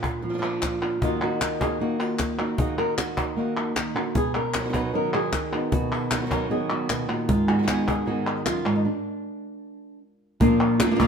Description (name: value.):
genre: flamenco.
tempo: 153 BPM.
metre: 4/4.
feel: straight.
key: unclear.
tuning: A4 = 438 Hz.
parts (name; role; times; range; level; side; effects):
flamenco guitar; melody; 0.0-11.1 s; Gb2 to B4; -24 LUFS; equal; none.
flamenco guitar; stabs; 0.0-8.5 s; Ab2 to Ab4; -31 LUFS; right 3 dB; none.
cajon; percussion; 0.0-11.1 s; none; -29 LUFS; left 1 dB; none.
palmas hand claps; percussion; 0.0-11.1 s; none; -30 LUFS; left 1 dB; none.
room: moderate stone room reverb, RT60 1.2 s.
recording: minimal, uncompressed stereo recording.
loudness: -22 LUFS.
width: side -6 dB against mid.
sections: 0.0-10.4 A section.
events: stop 8.9-10.4.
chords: 0.0 Bb; 1.0 Ebm; 4.2 B; 7.3 Abm; 8.9 N.C.; 10.4 Bb.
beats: 0.23 0.63 | 1.02 1.41 1.80 2.19 | 2.59 2.98 3.37 3.76 | 4.15 4.54 4.94 5.33 | 5.72 6.11 6.50 6.89 | 7.29 7.68 8.07 8.46 | 8.85 9.24 9.63 10.02 | 10.41 10.80.